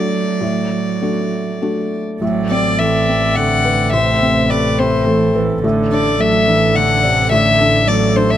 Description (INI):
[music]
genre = neoclassical piano and strings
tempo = 106 BPM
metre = 3/4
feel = rubato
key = unclear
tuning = A4 = 441 Hz
[part]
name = warm violin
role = melody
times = 0.0-8.4 s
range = C5 to F#5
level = -17 LUFS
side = left 3 dB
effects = none
[part]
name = warm cello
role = second line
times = 0.0-8.4 s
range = C3 to F#3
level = -21 LUFS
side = right 8 dB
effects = none
[part]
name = felt-muted upright piano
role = accompaniment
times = 0.0-8.4 s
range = A2 to D5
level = -19 LUFS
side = left 2 dB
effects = none
[part]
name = warm viola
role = accompaniment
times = 2.2-8.4 s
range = A4 to D5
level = -24 LUFS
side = right 4 dB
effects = none
[part]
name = hand-pumped harmonium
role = sustained chords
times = 2.2-8.4 s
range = C4 to E5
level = -27 LUFS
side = right 2 dB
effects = none
[part]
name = warm double bass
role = bass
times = 2.2-8.4 s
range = A1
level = -19 LUFS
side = equal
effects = none
[sound]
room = little or no reverb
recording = close, detailed microphones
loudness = -13 LUFS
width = side -11 dB against mid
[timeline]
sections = 0.0-2.2 A section; 2.2-8.4 B section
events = none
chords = 0.0 D/A; 2.2 Amadd9; 5.6 D/A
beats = | 0.41 1.02 1.62 | 2.22 2.79 3.36 | 3.93 4.50 5.07 | 5.63 6.20 6.76 | 7.32 7.88